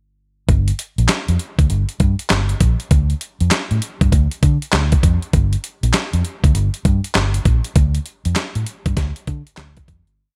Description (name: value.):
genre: R&B, new jack swing.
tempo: 99 BPM.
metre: 4/4.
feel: swing 64% on 16ths.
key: G minor.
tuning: A4 = 437 Hz.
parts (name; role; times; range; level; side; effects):
vintage muted fingered electric bass; bass; 0.5-10.0 s; G1 to D3; -20 LUFS; equal; none.
dusty soul sampler-style drum kit; drums; 0.5-10.2 s; handclaps, hi-hat, kick drum, snare drum; -20 LUFS; equal; none.
room: little or no reverb.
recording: none.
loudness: -18 LUFS.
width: mono.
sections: 0.5-10.2 verse.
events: fade-out 7.8-10.2.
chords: none.